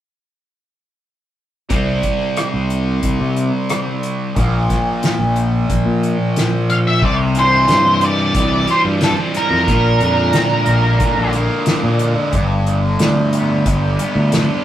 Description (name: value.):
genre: psychedelic rock.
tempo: 90 BPM.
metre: 4/4.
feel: straight.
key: unclear.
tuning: A4 = 438 Hz.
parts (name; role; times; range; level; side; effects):
fuzz guitar; riff; 1.7-14.6 s; G2 to D4; -18 LUFS; equal; distortion, phaser.
growling fingered electric bass; bass; 1.7-14.5 s; G1 to C3; -18 LUFS; equal; overdrive.
soft-mallet drum kit; drums; 1.7-14.5 s; crash cymbal, hi-hat, kick drum, rim click, snare drum; -20 LUFS; equal; none.
octave-fuzz lead guitar; melody; 6.7-11.3 s; A4 to F5; -16 LUFS; right 1 dB; distortion.
room: wet booth ambience, RT60 0.2 s.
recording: rough rehearsal-room recording.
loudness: -14 LUFS.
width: side -12 dB against mid.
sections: 1.7-7.0 A section; 7.0-14.6 B section.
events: none.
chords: 1.7 C5; 4.4 Bb5; 7.0 C; 9.7 Bb; 12.3 G.